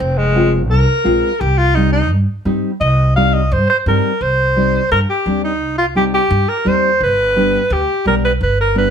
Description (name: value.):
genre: latin, cumbia.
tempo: 172 BPM.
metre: 4/4.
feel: straight.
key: C minor, C harmonic minor from 4.2 s.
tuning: A4 = 439 Hz.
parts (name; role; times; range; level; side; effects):
breathy alto saxophone; melody; 0.0-8.9 s; Ab3 to F5; -15 LUFS; equal; slapback echo.
upright bass; bass; 0.0-8.9 s; F1 to G2; -17 LUFS; equal; none.
nylon-string guitar; accompaniment; 0.4-8.9 s; G3 to F4; -18 LUFS; left 1 dB; none.
room: light reverb.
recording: close, detailed microphones.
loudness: -12 LUFS.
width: side -7 dB against mid.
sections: 0.0-4.2 A section; 4.2-8.9 B section.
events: alto saxophone solo 0.0-4.2.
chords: 0.0 Fm; 1.4 Cm; 7.0 G.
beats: | 0.01 0.36 0.71 1.06 | 1.41 1.76 2.11 2.46 | 2.81 3.15 3.50 3.85 | 4.20 4.55 4.90 5.25 | 5.60 5.95 6.30 6.65 | 7.00 7.35 7.70 8.05 | 8.40 8.75.